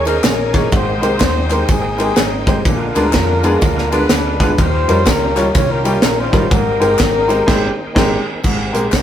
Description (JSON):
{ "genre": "uptempo gospel", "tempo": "124 BPM", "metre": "4/4", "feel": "swing 62% on 8ths", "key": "Ab major", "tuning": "A4 = 440 Hz", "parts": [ { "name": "mellow horn section", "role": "melody", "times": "0.0-8.0 s", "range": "C4 to Db5", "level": "-18 LUFS", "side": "left 2 dB", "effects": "none" }, { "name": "bright tonewheel organ", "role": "sustained chords", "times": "0.0-9.0 s", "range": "D3 to G5", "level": "-26 LUFS", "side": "right 1 dB", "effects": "slow rotary speaker, chorus vibrato" }, { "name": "hollow-body short-scale fingered electric bass", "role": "bass", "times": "0.0-9.0 s", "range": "G1 to F2", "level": "-22 LUFS", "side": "equal", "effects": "none" }, { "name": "bright grand piano", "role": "accompaniment", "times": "0.1-9.0 s", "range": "Ab2 to Db5", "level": "-18 LUFS", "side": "equal", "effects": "none" }, { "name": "tight funk drum kit", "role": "drums", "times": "0.1-9.0 s", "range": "crash cymbal, hi-hat, kick drum, ride cymbal, snare drum", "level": "-16 LUFS", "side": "equal", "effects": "none" }, { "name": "tambourine and handclaps", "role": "percussion", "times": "0.1-9.0 s", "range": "none", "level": "-28 LUFS", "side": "left 3 dB", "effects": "none" } ], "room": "moderate stone room reverb, RT60 1.2 s", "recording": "rough rehearsal-room recording", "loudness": "-12 LUFS", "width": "side -10 dB against mid", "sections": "0.0-8.4 A section", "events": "band accent 7.5-8.4", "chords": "0.0 Eb7sus4; 0.7 Abmaj9; 2.7 Bb7b9; 4.6 Eb9; 6.5 Abmaj9", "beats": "0.24 | 0.73 1.21 1.69 2.17 | 2.65 3.14 3.62 4.10 | 4.58 5.07 5.55 6.03 | 6.51 7.00 7.48 7.96 | 8.44 8.93" }